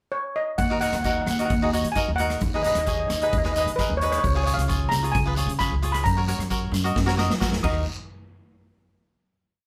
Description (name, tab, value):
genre	calypso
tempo	132 BPM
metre	4/4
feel	straight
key	Eb minor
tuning	A4 = 440 Hz
part	steel pan	melody	0.1-7.8 s	Cb5 to Eb6	-29 LUFS	equal	none
part	upright bass	bass	0.6-7.8 s	Db2 to Gb3	-28 LUFS	equal	none
part	street-band drum kit	drums	0.6-7.7 s	crash cymbal, hi-hat, kick drum, rim click, snare drum	-30 LUFS	equal	none
part	guiro	percussion	0.6-7.8 s	none	-39 LUFS	equal	none
part	cavaquinho	accompaniment	0.7-7.8 s	Eb4 to Eb5	-30 LUFS	equal	none
room	light reverb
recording	none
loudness	-24 LUFS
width	mono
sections	0.0-0.6 pickup bar; 0.6-7.9 verse; 7.9-9.7 final hit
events	drum fill 7.0-7.9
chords	0.0 N.C.; 0.6 Ebm; 2.4 Abm/Eb; 4.2 Db7; 6.1 Gb; 7.6 Ebm; 7.9 N.C.